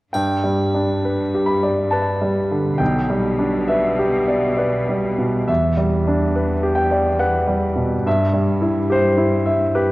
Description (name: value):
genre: classical, romantic movement for piano and orchestra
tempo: 68 BPM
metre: 3/4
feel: uneven beats, rubato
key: G major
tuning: A4 = 440 Hz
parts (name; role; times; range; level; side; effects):
- clear concert grand piano; melody; 0.1-9.9 s; B1 to B5; -17 LUFS; equal; none
- clear symphonic cello section; bass; 0.1-9.9 s; E2 to B2; -24 LUFS; equal; none
- triangle; percussion; 0.1-1.9 s; none; -39 LUFS; left 1 dB; none
room: moderate concert hall reverb, RT60 1.8 s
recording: worn, warbling old tape, cassette tape, warbly pitch drift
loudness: -16 LUFS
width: side -18 dB against mid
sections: 0.1-9.9 A section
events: none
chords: 0.1 G; 2.8 G/B; 5.5 Em7; 8.1 Em/G